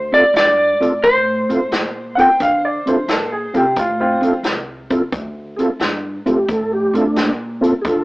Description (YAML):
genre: electric blues shuffle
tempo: 88 BPM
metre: 4/4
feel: swing 68% on 8ths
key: D minor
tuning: A4 = 440 Hz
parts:
  - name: electric slide guitar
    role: melody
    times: 0.0-4.4 s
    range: C5 to D5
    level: -15 LUFS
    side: equal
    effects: none
  - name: upright bass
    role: bass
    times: 0.0-8.0 s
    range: C2 to D3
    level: -26 LUFS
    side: equal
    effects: none
  - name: mellow tonewheel organ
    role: accompaniment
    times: 0.1-8.0 s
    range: A3 to A4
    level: -16 LUFS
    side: right 1 dB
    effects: slow rotary speaker, chorus vibrato
  - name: swinging big-band drum kit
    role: drums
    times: 0.1-8.0 s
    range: hi-hat, kick drum, snare drum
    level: -22 LUFS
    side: equal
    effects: none
  - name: warm upright piano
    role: second line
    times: 2.2-4.4 s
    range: C4 to G5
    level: -16 LUFS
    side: equal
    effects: none
room: moderate small room reverb, RT60 0.5 s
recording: rough rehearsal-room recording, tube saturation, AM radio sound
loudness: -14 LUFS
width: side -21 dB against mid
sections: 0.0-5.1 A section; 5.1-8.0 B section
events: none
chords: 0.0 Dm7